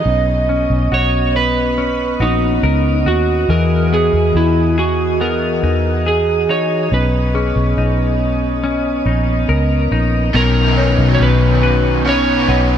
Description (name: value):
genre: dream pop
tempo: 70 BPM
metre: 4/4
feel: straight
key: B major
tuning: A4 = 440 Hz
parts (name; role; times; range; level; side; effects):
- electric slide guitar; melody; 0.0-12.8 s; D#4 to D#5; -18 LUFS; right 2 dB; ping-pong delay
- mellow tonewheel organ; sustained chords; 0.0-12.8 s; E3 to D#5; -20 LUFS; right 1 dB; slow rotary speaker
- semi-hollow electric guitar; arpeggios; 0.0-12.8 s; B2 to B4; -20 LUFS; left 6 dB; lush chorus, ping-pong delay
- celesta; texture; 0.0-0.5, 7.3-12.8 s; G#4 to F#5; -28 LUFS; left 3 dB; ping-pong delay
- vintage muted fingered electric bass; bass; 0.1-12.8 s; A#1 to E2; -17 LUFS; equal; none
- raw garage guitar; accompaniment; 10.3-12.8 s; B2 to B4; -19 LUFS; right 3 dB; overdrive, tremolo, analog chorus
room: moderate shimmer reverb, RT60 4.5 s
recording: none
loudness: -13 LUFS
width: side -9 dB against mid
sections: 0.0-10.3 A section; 10.3-12.8 B section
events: none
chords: 0.1 Bmaj9; 3.5 Emaj9; 6.9 Bmaj9; 10.3 Badd9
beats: | 0.06 0.92 1.77 2.63 | 3.49 4.35 5.20 6.06 | 6.92 7.78 8.63 9.49 | 10.35 11.20 12.06